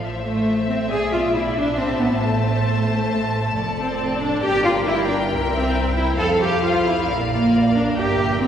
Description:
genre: quick classical-period movement for string orchestra.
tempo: 136 BPM.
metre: 4/4.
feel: straight.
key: A minor.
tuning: A4 = 440 Hz.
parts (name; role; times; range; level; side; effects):
warm studio violin section; melody; 0.0-8.5 s; E5 to A5; -27 LUFS; left 3 dB; none.
warm studio violin section; second line; 0.0-8.5 s; A4 to F5; -27 LUFS; left 2 dB; none.
clear studio double bass section; bass; 0.0-8.5 s; F1 to F2; -25 LUFS; right 2 dB; none.
rich studio viola section; accompaniment; 0.2-8.5 s; A3 to A4; -25 LUFS; equal; none.
warm studio cello section; bass; 0.2-8.5 s; A3 to A4; -21 LUFS; right 1 dB; none.
room: wet church reverb, RT60 3.6 s.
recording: recorded in a church or concert hall.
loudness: -18 LUFS.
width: side -9 dB against mid.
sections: 0.0-8.5 A section.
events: none.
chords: 0.0 Am; 0.9 E7/B; 1.8 Am; 3.5 Dm/F; 4.4 Gm; 5.3 C7; 6.2 F; 7.1 Bb.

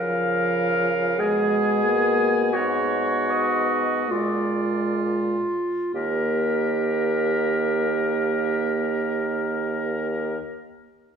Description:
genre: classical, slow romantic movement for wind quintet.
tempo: 31-52 BPM.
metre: 3/4.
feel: rubato.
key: unclear.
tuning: A4 = 442 Hz.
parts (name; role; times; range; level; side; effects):
warm oboe; second line; 0.0-10.4 s; Bb4 to Ab5; -28 LUFS; left 4 dB; none.
bright clarinet; accompaniment; 0.0-10.4 s; F4 to Bb4; -24 LUFS; right 3 dB; none.
mellow French horn; accompaniment; 0.0-10.4 s; F3 to Cb4; -28 LUFS; equal; none.
warm bassoon; bass; 0.0-10.4 s; Eb2 to Db3; -28 LUFS; equal; none.
room: wet recital hall reverb, RT60 1.6 s.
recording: heard from further back in the room.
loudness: -21 LUFS.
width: side -7 dB against mid.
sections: 0.0-5.9 A section; 5.9-10.9 B section.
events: slowing down 0.0-5.9.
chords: 0.0 Bbm/Db; 1.2 Abm/Cb; 4.1 Bb7; 5.9 Eb.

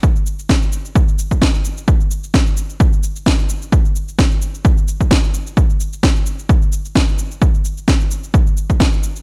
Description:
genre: house.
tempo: 130 BPM.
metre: 4/4.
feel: swing 55% on 16ths.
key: none.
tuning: none.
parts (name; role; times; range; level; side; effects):
electronic cabasa and snare drum; drums; 0.0-9.2 s; none; -23 LUFS; equal; overdrive.
electronic kick drum; drums; 0.0-8.9 s; none; -17 LUFS; equal; overdrive.
room: little or no reverb.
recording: none.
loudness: -16 LUFS.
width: mono.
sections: 0.0-9.2 A section.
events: none.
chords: none.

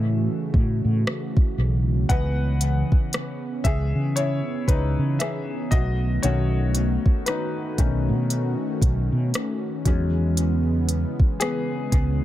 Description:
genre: contemporary R&B.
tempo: 58 BPM.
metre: 4/4.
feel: swing 58% on 16ths.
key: C# minor.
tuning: A4 = 440 Hz.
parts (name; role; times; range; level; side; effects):
clear concert grand piano; accompaniment; 0.0-12.2 s; D#3 to F#5; -29 LUFS; left 5 dB; dub echo.
warm analog pad; sustained chords; 0.0-12.2 s; C#3 to F#4; -29 LUFS; right 1 dB; chorus, sidechain pumping.
mellow fretless electric bass; bass; 0.0-12.2 s; B1 to C#3; -22 LUFS; equal; none.
smooth R&B drum kit; drums; 0.5-12.2 s; hi-hat, kick drum, rim click; -21 LUFS; equal; none.
room: little or no reverb.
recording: echo-heavy mix.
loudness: -20 LUFS.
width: side -13 dB against mid.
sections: 0.0-12.2 A section.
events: break 0.0-2.1; grand piano solo 0.0-12.2.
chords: 0.0 Amaj7; 2.1 C#m7; 5.7 B7; 9.9 E6.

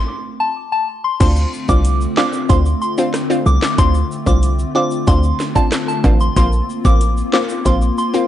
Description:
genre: dancehall.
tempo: 93 BPM.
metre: 4/4.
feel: straight.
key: D minor.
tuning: A4 = 440 Hz.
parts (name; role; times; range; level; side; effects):
soft synth bell; melody; 0.4-8.1 s; A5 to D6; -21 LUFS; left 1 dB; chorus, phaser, tape echo.
analog pluck; accompaniment; 1.2-8.3 s; Bb3 to F4; -21 LUFS; left 1 dB; chorus.
hollow soft pad; sustained chords; 1.2-8.3 s; D3 to F4; -24 LUFS; left 2 dB; ensemble chorus, sidechain pumping.
short 808-style bass; bass; 1.2-7.9 s; A1 to D2; -15 LUFS; equal; none.
island pop drum kit; drums; 1.2-7.8 s; crash cymbal, handclaps, hi-hat, kick drum, rim click, snare drum; -18 LUFS; equal; none.
tube shaker and timbales; percussion; 1.2-8.3 s; none; -30 LUFS; equal; none.
room: digital ambience.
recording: dry, gritty hardware recording, nothing above 10.3 kHz.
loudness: -14 LUFS.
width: side -12 dB against mid.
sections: 0.0-1.2 A section; 1.2-8.3 B section.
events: stop 0.0-1.2.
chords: 0.0 N.C.; 1.2 Dm7; 6.4 Bbsus2.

